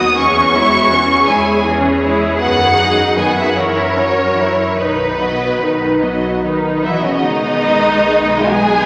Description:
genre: classical, slow romantic movement for string orchestra.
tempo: 48-55 BPM (dotted quarters).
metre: 6/8.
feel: rubato.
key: B major.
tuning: A4 = 440 Hz.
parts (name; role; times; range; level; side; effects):
rich studio violin section; melody; 0.0-8.9 s; B4 to D#6; -18 LUFS; equal; none.
warm studio violin section; second line; 0.0-8.9 s; C#4 to D#5; -20 LUFS; equal; none.
clear studio viola section; accompaniment; 0.0-8.9 s; D#3 to E4; -21 LUFS; equal; none.
rich studio cello section; bass; 0.0-8.9 s; C#3 to B4; -24 LUFS; equal; none.
rich studio double bass section; bass; 0.0-8.9 s; B1 to F#2; -27 LUFS; equal; none.
room: wet concert hall reverb, RT60 2.0 s.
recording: none.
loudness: -14 LUFS.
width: mono.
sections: 0.0-7.2 A section; 7.2-8.9 A section.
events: none.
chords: 0.2 C#m/E; 2.4 B/F#; 3.6 F#7; 4.8 B.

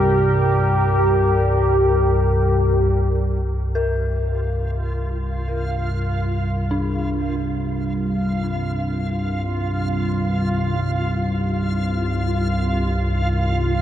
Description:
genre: dark ambient drone.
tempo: free time.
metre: none.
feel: none.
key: C minor.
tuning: A4 = 437 Hz.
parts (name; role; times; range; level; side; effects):
deep dark ambient pad; sustained chords; 0.0-13.8 s; C3 to C5; -23 LUFS; equal; chorus, built-in reverb.
dark detuned synth bell; arpeggios; 0.0-13.8 s; D4 to Bb4; -31 LUFS; left 1 dB; chorus, phaser, tape echo.
analog drone; drone; 0.0-13.8 s; C2 to G2; -20 LUFS; equal; chorus.
backwards swelling texture; texture; 4.3-13.8 s; F4 to F5; -28 LUFS; equal; built-in reverb.
room: moderate huge ambient reverb, RT60 8.9 s.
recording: none.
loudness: -18 LUFS.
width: side -10 dB against mid.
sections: 0.0-3.5 A section; 3.5-13.8 B section.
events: none.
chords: 0.0 C5; 3.5 Cm.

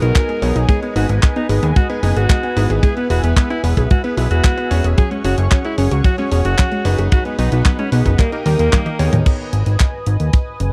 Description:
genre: italo disco.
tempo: 112 BPM.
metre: 4/4.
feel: straight.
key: G# minor.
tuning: A4 = 438 Hz.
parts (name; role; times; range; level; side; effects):
bright alto saxophone; melody; 0.0-9.2 s; G#3 to A#4; -25 LUFS; equal; vintage 12-bit sampler grit, tape echo.
warm analog pad; sustained chords; 0.0-10.7 s; G#4 to D#6; -30 LUFS; equal; chorus.
analog pluck; arpeggios; 0.0-9.2 s; F#3 to G5; -28 LUFS; equal; chorus, tape echo.
bright electric grand piano; stabs; 0.0-9.5 s; A#3 to C#5; -27 LUFS; equal; none.
fat analog bass; bass; 0.0-10.7 s; E1 to D#2; -19 LUFS; equal; none.
clean 12-bit digital drum machine; drums; 0.0-10.7 s; crash cymbal, handclaps, hi-hat, toms; -27 LUFS; equal; none.
kick drum; drums; 0.2-10.4 s; none; -16 LUFS; equal; none.
room: little or no reverb.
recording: dry, close 1970s-style studio recording.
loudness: -16 LUFS.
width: mono.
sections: 0.0-9.3 A section; 9.3-10.7 B section.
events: drum fill 8.7-9.3.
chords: 0.0 B6; 0.7 G#m; 2.8 E; 5.0 F#sus2; 7.1 B6; 8.2 D#; 9.3 G#m.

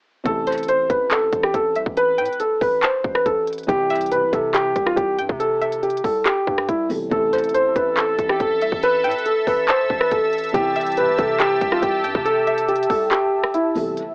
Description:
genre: hip hop, trap.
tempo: 140 BPM.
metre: 4/4.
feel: half-time.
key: A minor.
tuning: A4 = 440 Hz.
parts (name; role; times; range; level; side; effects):
felt-muted upright piano; accompaniment; 0.2-14.0 s; C3 to A4; -29 LUFS; equal; cassette tape.
dark grand piano; melody; 0.3-13.7 s; E4 to C5; -18 LUFS; equal; none.
hard-hitting 808-style bass; bass; 0.3-13.1 s; A1 to C3; -31 LUFS; equal; none.
trap drum kit; drums; 0.3-14.1 s; handclaps, hi-hat, kick drum, rim click; -24 LUFS; equal; cassette tape.
string-like resonator pluck; second line; 0.5-12.7 s; C5 to A5; -27 LUFS; equal; chorus, cassette tape, tape echo.
sweeping resonant pad; sustained chords; 7.1-14.1 s; A3 to E6; -25 LUFS; equal; chorus, cassette tape.
room: moderate studio reverb, RT60 0.5 s.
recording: home recording on cassette, AM radio sound.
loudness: -17 LUFS.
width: side -35 dB against mid.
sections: 0.3-14.0 A section.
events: break 0.0, 14.0; kick muted 13.1-14.0.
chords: 0.3 Am; 3.7 C; 7.1 Am; 10.5 C.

